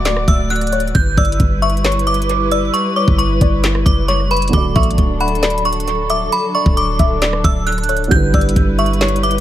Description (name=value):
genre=hip hop, trap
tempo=134 BPM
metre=4/4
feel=half-time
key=D major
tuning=A4 = 441 Hz
part: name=metallic FM bell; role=melody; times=0.0-9.4 s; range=B5 to G6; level=-19 LUFS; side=right 2 dB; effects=chorus, phaser, tape echo
part: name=soft round pluck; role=second line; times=0.0-9.4 s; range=B4 to F#5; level=-24 LUFS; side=left 6 dB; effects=chorus, tape echo
part: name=dark symphonic string section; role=sustained chords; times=0.0-9.4 s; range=F#3 to D5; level=-22 LUFS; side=equal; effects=none
part: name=clean 808-style bass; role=bass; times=0.0-9.4 s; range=D1 to A1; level=-18 LUFS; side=equal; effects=none
part: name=trap drum kit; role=drums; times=0.1-9.4 s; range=handclaps, hi-hat, kick drum, rim click, snare drum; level=-18 LUFS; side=equal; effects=none
part: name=felt-muted upright piano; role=accompaniment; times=4.5-9.4 s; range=D3 to D5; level=-24 LUFS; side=right 4 dB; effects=tape echo
room=little or no reverb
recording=echo-heavy mix, vinyl crackle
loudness=-13 LUFS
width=side -12 dB against mid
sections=0.0-9.4 A section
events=none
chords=0.0 D; 0.9 G6; 4.5 D; 8.1 G6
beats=0.05 0.50 | 0.95 1.40 1.84 2.29 | 2.74 3.19 3.64 4.08 | 4.53 4.98 5.43 5.88 | 6.32 6.77 7.22 7.67 | 8.11 8.56 9.01